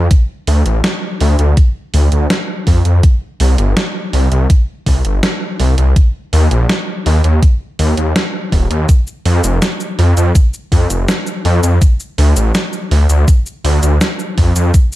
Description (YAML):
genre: synthwave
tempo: 82 BPM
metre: 4/4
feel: straight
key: D phrygian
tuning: A4 = 440 Hz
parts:
  - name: wide detuned saw bass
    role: bass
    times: 0.0-14.7 s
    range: Eb1 to F2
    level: -11 LUFS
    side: equal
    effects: chorus, sidechain pumping
  - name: clean 12-bit digital drum machine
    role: drums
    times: 0.1-15.0 s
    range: cabasa, hi-hat, snare drum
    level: -18 LUFS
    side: equal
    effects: studio reverb, gated reverb
  - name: electronic kick drum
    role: drums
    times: 0.1-14.9 s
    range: none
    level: -9 LUFS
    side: equal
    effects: overdrive, studio reverb
room: little or no reverb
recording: none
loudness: -11 LUFS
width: side -16 dB against mid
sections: 0.0-15.0 A section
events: none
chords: none